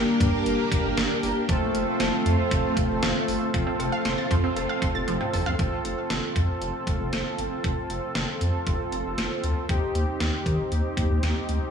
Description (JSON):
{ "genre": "synth-pop", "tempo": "117 BPM", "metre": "4/4", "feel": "straight", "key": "F major, F mixolydian from 5.6 s", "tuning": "A4 = 440 Hz", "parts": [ { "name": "analog synth brass", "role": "accompaniment", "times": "0.0-11.7 s", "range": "A3 to Bb4", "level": "-27 LUFS", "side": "right 1 dB", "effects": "chorus" }, { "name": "string machine, full ensemble", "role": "sustained chords", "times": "0.0-5.6 s", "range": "A3 to G4", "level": "-28 LUFS", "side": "equal", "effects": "ensemble chorus" }, { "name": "rubbery square bass", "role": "bass", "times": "0.0-11.6 s", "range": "F1 to Eb3", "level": "-28 LUFS", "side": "equal", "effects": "none" }, { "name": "detuned 8-bit digital drum machine", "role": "drums", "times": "0.2-11.6 s", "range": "hi-hat, kick drum, snare drum, toms", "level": "-28 LUFS", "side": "equal", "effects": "none" }, { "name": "wide unison pluck", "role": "arpeggios", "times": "3.5-5.6 s", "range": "F3 to A6", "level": "-31 LUFS", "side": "right 2 dB", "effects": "digital delay" } ], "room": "moderate lush hall reverb, RT60 1.7 s, digital ambience", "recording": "small room ambience", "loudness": "-23 LUFS", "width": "side -7 dB against mid", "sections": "0.0-3.5 A section; 3.5-5.6 B section; 5.6-11.7 C section", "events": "drum fill 5.1-5.6", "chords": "0.0 Gm; 1.5 F; 9.7 Eb6" }